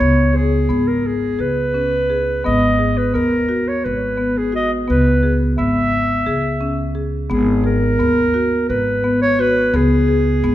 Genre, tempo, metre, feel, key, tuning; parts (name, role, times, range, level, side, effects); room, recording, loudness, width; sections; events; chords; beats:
contemporary instrumental, chamber music in an uneven meter; 172 BPM (eighths); 7/8; straight; G# minor; A4 = 440 Hz
warm clarinet; melody; 0.0-10.5 s; G#4 to E5; -19 LUFS; right 1 dB
marimba with medium hard mallets; arpeggios; 0.0-10.5 s; B3 to G#4; -19 LUFS; left 2 dB
upright bass; bass; 0.0-10.5 s; G#1 to D#2; -20 LUFS; equal
wet concert hall reverb, RT60 1.9 s; minimal, uncompressed stereo recording; -15 LUFS; side -13 dB against mid
0.0-10.5 A section
0.0 C#5; 2.4 G#m7; 4.9 C#m7; 7.3 G#m9; 9.7 C#5
| 0.00 0.35 0.69 1.04 1.40 1.75 2.10 | 2.45 2.80 3.14 3.49 3.84 4.19 4.54 | 4.88 5.23 5.58 5.92 6.27 6.61 6.96 | 7.30 7.65 7.99 8.34 8.69 9.04 9.39 | 9.74 10.09 10.44